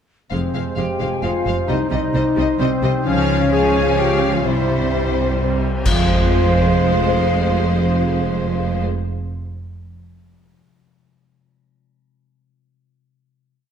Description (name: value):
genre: cinematic, heroic adventure film score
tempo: 130 BPM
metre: 3/4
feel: straight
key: F minor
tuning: A4 = 440 Hz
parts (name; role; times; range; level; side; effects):
- warm symphonic violin section; melody; 0.3-8.8 s; C5 to F5; -27 LUFS; left 6 dB; none
- hollow small flute group; second line; 0.3-8.8 s; C5 to Ab5; -27 LUFS; left 3 dB; none
- warm clarinet; second line; 0.3-8.8 s; C4 to Ab4; -28 LUFS; left 2 dB; none
- warm symphonic violin section; second line; 0.3-8.8 s; Ab4 to C5; -31 LUFS; left 3 dB; none
- rich symphonic viola section; accompaniment; 0.3-8.8 s; F3 to Ab3; -28 LUFS; equal; none
- dark French horn section; sustained chords; 0.3-8.8 s; C4 to Ab4; -25 LUFS; left 4 dB; none
- mellow trombone section; sustained chords; 0.3-8.8 s; F2 to Ab3; -30 LUFS; right 4 dB; none
- concert harp; arpeggios; 0.3-9.7 s; C3 to C6; -28 LUFS; left 10 dB; none
- dark trumpet section; stabs; 0.3-8.8 s; C5 to Db5; -26 LUFS; right 4 dB; none
- rich symphonic cello section; bass; 0.3-8.8 s; F2 to Db3; -23 LUFS; right 3 dB; none
- rich symphonic double bass section; bass; 0.3-8.8 s; F1 to Db2; -22 LUFS; right 3 dB; none
- cymbal swell, clash cymbals and concert bass drum; percussion; 3.1-6.7 s; none; -23 LUFS; equal; none
room: moderate scoring stage reverb, RT60 1.6 s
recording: dark, warm production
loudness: -16 LUFS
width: side -8 dB against mid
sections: 0.3-5.9 theme; 5.9-8.6 final chord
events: band accent 5.9-6.3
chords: 0.3 Fm; 1.7 Cm; 3.1 Db; 4.5 C; 5.9 Fm